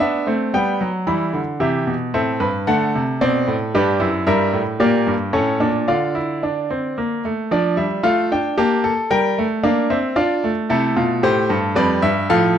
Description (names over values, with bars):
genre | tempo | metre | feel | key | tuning
classical, baroque-style 4-part fugue for grand piano | 112 BPM | 3/4 | straight | D minor from 4.3 s | A4 = 441 Hz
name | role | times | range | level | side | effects
bright baby grand piano | solo | 0.0-12.6 s | F2 to B5 | -16 LUFS | equal | none
room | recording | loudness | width
moderate large studio reverb, RT60 1.3 s | dark, warm production | -16 LUFS | side -9 dB against mid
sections
0.0-1.1 A section; 1.1-7.5 B section; 7.5-12.6 A section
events
none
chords
0.0 Am; 0.5 Gmaj7; 1.1 Em; 2.1 Am7; 2.7 D; 3.7 Gmaj7; 4.3 Edim/G; 5.3 A; 5.9 Dm; 7.5 Dm/F; 8.6 Gm/Bb; 9.1 Gm; 10.2 Dm; 10.7 Am; 11.8 Dm/F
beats
0.53 | 1.06 1.60 2.14 | 2.67 3.21 3.75 | 4.28 4.81 5.34 | 5.88 6.42 6.96 | 7.51 8.05 8.58 | 9.11 9.64 10.17 | 10.70 11.23 11.76 | 12.30